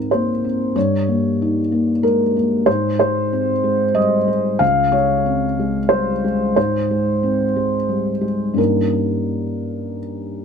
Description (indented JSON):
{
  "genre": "neoclassical minimalist piano",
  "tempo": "92 BPM",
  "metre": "3/4",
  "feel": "uneven beats, rubato",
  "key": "Ab major",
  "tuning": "A4 = 441 Hz",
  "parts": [
    { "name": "felt-muted upright piano", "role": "solo", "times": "0.0-10.4 s", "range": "Db2 to F5", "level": "-16 LUFS", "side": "equal", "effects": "none" }
  ],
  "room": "light reverb",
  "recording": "close, detailed microphones",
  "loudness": "-16 LUFS",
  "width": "side -6 dB against mid",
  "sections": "0.0-10.4 A section",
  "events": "none",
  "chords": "0.0 Ab; 0.8 Eb7/G; 2.7 Ab; 4.6 Db5; 6.6 Ab; 8.6 Eb7/G",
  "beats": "0.11 | 0.75 1.39 2.03 | 2.67 3.31 3.96 | 4.61 5.26 5.91 | 6.56 7.22 7.89 | 8.58 9.28 9.98"
}